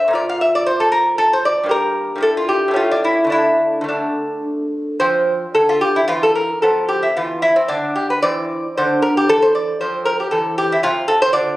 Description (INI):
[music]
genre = classical, baroque-style dance for lute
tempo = 107-118 BPM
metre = 3/4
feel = rubato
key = D minor, F major from 5.0 s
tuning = A4 = 441 Hz
[part]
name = lute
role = solo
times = 0.0-11.6 s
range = G2 to F5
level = -15 LUFS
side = equal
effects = none
[sound]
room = light reverb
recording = recorded on a phone in the room, club reverb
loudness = -15 LUFS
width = side -17 dB against mid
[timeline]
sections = 0.0-5.0 A section; 5.0-11.6 A section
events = none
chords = 0.2 Bb5; 1.7 Gm; 2.3 Edim/G; 2.8 A; 3.3 D5; 5.0 F5; 6.6 Dm69; 8.2 C; 9.8 F5